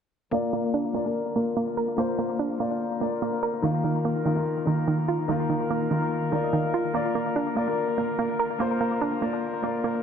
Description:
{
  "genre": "hip hop",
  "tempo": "145 BPM",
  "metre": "4/4",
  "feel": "half-time",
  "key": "Bb major",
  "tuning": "A4 = 440 Hz",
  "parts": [
    { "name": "dark grand piano", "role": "accompaniment", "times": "0.3-10.0 s", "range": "Eb3 to F5", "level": "-27 LUFS", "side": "left 5 dB", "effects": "low-pass filter" },
    { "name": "warm brass ensemble", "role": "sustained chords", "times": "0.3-10.0 s", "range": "D3 to Bb4", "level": "-34 LUFS", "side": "left 2 dB", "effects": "stereo widening, low-pass filter" },
    { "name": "hollow square pluck", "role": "arpeggios", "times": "0.3-10.0 s", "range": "Eb3 to Bb4", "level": "-27 LUFS", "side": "right 5 dB", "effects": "chorus, low-pass filter, ping-pong delay" }
  ],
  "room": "moderate huge ambient reverb, RT60 6.4 s",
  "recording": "none",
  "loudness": "-24 LUFS",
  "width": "side -7 dB against mid",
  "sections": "0.3-10.0 A section",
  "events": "filter sweep 0.3-10.0; grand piano fill 6.1-6.9",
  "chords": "0.3 Bb; 3.6 Ebsus2; 6.9 Bb",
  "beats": "| 0.33 0.74 1.15 1.57 | 1.98 2.39 2.81 3.22 | 3.63 4.05 4.46 4.88 | 5.29 5.70 6.12 6.53 | 6.95 7.36 7.77 8.19 | 8.60 9.02 9.43 9.84"
}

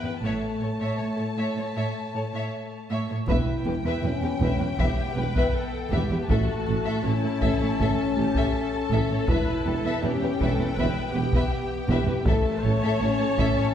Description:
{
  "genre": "cinematic, epic orchestral film score",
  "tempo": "80 BPM",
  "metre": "4/4",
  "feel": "straight",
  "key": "E dorian",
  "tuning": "A4 = 440 Hz",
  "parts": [
    { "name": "warm symphonic violin section", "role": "melody", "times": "0.0-13.7 s", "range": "G5 to A5", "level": "-36 LUFS", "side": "left 5 dB", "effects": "none" },
    { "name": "warm symphonic violin section", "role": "second line", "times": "0.0-13.7 s", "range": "G4 to E5", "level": "-32 LUFS", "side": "left 4 dB", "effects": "none" },
    { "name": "rich symphonic viola section", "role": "accompaniment", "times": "0.0-13.7 s", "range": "E4 to C#5", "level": "-33 LUFS", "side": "equal", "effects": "none" },
    { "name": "warm French horn section", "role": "sustained chords", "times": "0.0-13.7 s", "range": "A3 to E4", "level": "-30 LUFS", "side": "left 4 dB", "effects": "none" },
    { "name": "rich symphonic cello section", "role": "bass", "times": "0.0-13.6 s", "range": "E2 to A2", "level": "-29 LUFS", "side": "right 2 dB", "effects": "none" },
    { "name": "rich chamber double bass section", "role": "bass", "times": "0.2-13.5 s", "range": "E1 to A1", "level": "-31 LUFS", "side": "right 3 dB", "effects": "none" },
    { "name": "mellow tuba", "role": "bass", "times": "3.3-13.4 s", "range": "E1 to A1", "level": "-32 LUFS", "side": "right 2 dB", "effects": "none" },
    { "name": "taiko ensemble", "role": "drums", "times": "3.3-13.7 s", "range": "none", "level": "-28 LUFS", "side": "equal", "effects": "none" }
  ],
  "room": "wet scoring stage reverb, RT60 1.7 s",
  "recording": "heard from further back in the room",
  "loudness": "-23 LUFS",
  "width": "side -9 dB against mid",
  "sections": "0.0-3.3 A section; 3.3-13.7 A section",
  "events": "none",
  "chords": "0.2 A; 3.3 Em; 6.3 A; 9.3 Em; 12.3 A",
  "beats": "| 0.22 0.99 1.75 2.52 | 3.28 4.04 4.79 5.54 | 6.29 7.04 7.79 8.54 | 9.28 10.03 10.77 11.52 | 12.26 13.01"
}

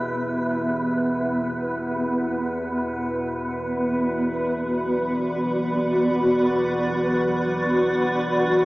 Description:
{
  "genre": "dark ambient drone",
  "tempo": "free time",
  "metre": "none",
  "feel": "none",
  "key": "unclear",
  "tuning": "A4 = 440 Hz",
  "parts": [
    { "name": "granular cloud pad", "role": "sustained chords", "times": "0.0-8.7 s", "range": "B3 to E5", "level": "-23 LUFS", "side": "equal", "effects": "built-in reverb" },
    { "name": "analog drone", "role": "drone", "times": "0.0-8.7 s", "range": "E2 to B2", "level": "-28 LUFS", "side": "equal", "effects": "chorus" },
    { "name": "wind-like tuned noise texture", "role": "texture", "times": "0.0-8.7 s", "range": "B4", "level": "-28 LUFS", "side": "right 1 dB", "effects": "built-in reverb, analog chorus" }
  ],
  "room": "wet lush hall reverb, RT60 2.9 s",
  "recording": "dreamy mix soaked in reverb, small speaker sound",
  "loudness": "-21 LUFS",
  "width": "side -19 dB against mid",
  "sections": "0.0-8.7 A section",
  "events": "filter sweep on synth drone 0.0-8.7",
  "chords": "0.0 Em; 1.6 Bm",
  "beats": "free time"
}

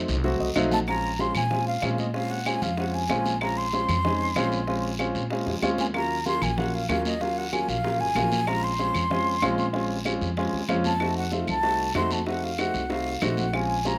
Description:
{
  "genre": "Afro-Cuban jazz",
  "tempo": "190 BPM",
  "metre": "4/4",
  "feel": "straight",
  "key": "Bb minor",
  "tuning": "A4 = 440 Hz",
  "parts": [
    { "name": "warm upright piano", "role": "accompaniment", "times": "0.0-14.0 s", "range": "Gb3 to Gb5", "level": "-30 LUFS", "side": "equal", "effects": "none" },
    { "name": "upright bass", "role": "bass", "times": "0.0-14.0 s", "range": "Ab1 to Bb2", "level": "-33 LUFS", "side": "equal", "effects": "none" },
    { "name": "congas", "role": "percussion", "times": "0.1-14.0 s", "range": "none", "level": "-38 LUFS", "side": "equal", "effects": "none" },
    { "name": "cowbell and bongos", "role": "percussion", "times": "0.1-14.0 s", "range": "none", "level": "-38 LUFS", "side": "equal", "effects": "none" },
    { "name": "guiro", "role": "percussion", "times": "0.1-14.0 s", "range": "none", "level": "-39 LUFS", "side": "equal", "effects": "none" },
    { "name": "claves", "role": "percussion", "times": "0.6-13.7 s", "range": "none", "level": "-36 LUFS", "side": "equal", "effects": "none" },
    { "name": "breathy mellow concert flute", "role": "melody", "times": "0.7-14.0 s", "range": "Eb5 to C6", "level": "-30 LUFS", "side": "equal", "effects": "slapback echo" }
  ],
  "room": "little or no reverb",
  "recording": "recorded outdoors, with no room sound",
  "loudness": "-26 LUFS",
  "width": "mono",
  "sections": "0.9-14.0 A section",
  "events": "upright piano fill 0.2-0.9; drum fill 5.5-5.9",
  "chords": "0.0 F7b9; 0.9 Bbm9; 5.9 Ebm9; 8.5 Bbm9; 11.0 F7b9",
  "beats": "0.24 0.56 | 0.88 1.19 1.51 1.83 | 2.14 2.46 2.78 3.09 | 3.41 3.73 4.04 4.36 | 4.68 4.99 5.31 5.63 | 5.94 6.26 6.58 6.89 | 7.21 7.52 7.84 8.16 | 8.47 8.79 9.11 9.42 | 9.74 10.05 10.37 10.69 | 11.00 11.32 11.63 11.95 | 12.27 12.58 12.90 13.21 | 13.53 13.85"
}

